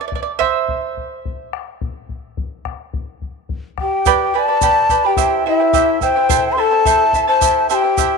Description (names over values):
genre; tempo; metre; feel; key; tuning
andean folk, Andean ensemble; 107 BPM; 2/4; straight; unclear; A4 = 438 Hz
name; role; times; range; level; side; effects
charango; accompaniment; 0.0-1.5, 4.1-8.2 s; E4 to B5; -19 LUFS; right 11 dB; none
bombo; percussion; 0.1-8.1 s; none; -25 LUFS; left 4 dB; none
breathy mellow large quena; melody; 3.8-8.2 s; E5 to C6; -15 LUFS; left 1 dB; tape echo
breathy large pan pipes; second line; 3.8-8.2 s; E4 to D5; -20 LUFS; left 12 dB; none
egg shaker; percussion; 4.1-8.1 s; none; -25 LUFS; right 19 dB; none
room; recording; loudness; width
moderate plate reverb, RT60 2.8 s; 1960s-style stereo with parts hard left and right; -13 LUFS; side -4 dB against mid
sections
0.0-4.1 A section; 4.1-8.2 B section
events
charango solo 0.0-4.1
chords
0.0 N.C.; 4.1 G; 5.2 C; 6.3 Am; 7.4 C